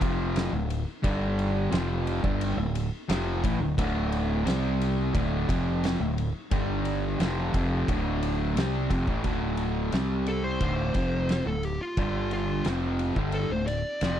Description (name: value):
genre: stoner and doom metal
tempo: 88 BPM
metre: 4/4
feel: straight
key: D minor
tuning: A4 = 439 Hz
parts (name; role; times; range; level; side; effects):
- fuzz guitar; riff; 0.0-14.2 s; D2 to C4; -28 LUFS; equal; distortion
- growling fingered electric bass; bass; 0.0-14.2 s; D1 to C2; -30 LUFS; equal; overdrive
- oversized low-tuned drum kit; drums; 0.0-14.2 s; kick drum, ride cymbal, snare drum; -32 LUFS; equal; none
- fuzz lead guitar; melody; 10.3-14.2 s; F4 to D5; -32 LUFS; equal; distortion, slapback echo
room: little or no reverb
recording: dry, close 1970s-style studio recording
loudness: -25 LUFS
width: side -10 dB against mid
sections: 0.0-9.2 A section; 9.2-14.2 B section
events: lead electric guitar solo 9.2-14.2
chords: 0.0 Dm; 1.0 G5; 1.7 Dm; 4.5 C5; 5.1 Dm; 6.5 G5; 7.2 Dm; 9.2 D5; 9.9 C5; 10.6 Dm; 12.0 G5; 12.7 Dm